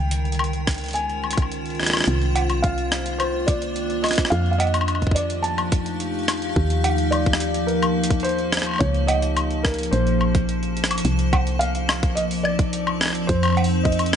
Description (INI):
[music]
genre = IDM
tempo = 107 BPM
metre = 4/4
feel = straight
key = C dorian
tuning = A4 = 440 Hz
[part]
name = felt-muted upright piano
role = melody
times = 0.0-14.2 s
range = Bb4 to A5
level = -27 LUFS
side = equal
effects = ping-pong delay
[part]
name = icy glass pad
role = sustained chords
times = 0.0-14.2 s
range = Eb3 to F5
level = -25 LUFS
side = equal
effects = chorus, built-in reverb
[part]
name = woody FM bass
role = bass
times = 0.0-14.2 s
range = Bb1 to F2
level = -25 LUFS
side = equal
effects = none
[part]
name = jungle sampler-style drum kit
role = drums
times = 0.1-14.2 s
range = cowbell, hi-hat, rim click, woodblock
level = -24 LUFS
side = left 1 dB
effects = none
[part]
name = electronic kick drum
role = drums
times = 0.7-14.0 s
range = none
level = -21 LUFS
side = equal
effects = none
[sound]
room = light reverb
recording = nothing above 10.3 kHz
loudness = -19 LUFS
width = side -8 dB against mid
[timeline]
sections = 0.0-11.0 A section; 11.0-14.2 B section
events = drum fill 10.8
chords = 0.0 Dbmaj9; 2.1 Cm11; 4.3 F9; 6.6 Ebmaj9; 8.8 Dbmaj9; 9.9 Bbmaj9; 11.0 Cm11; 13.3 F7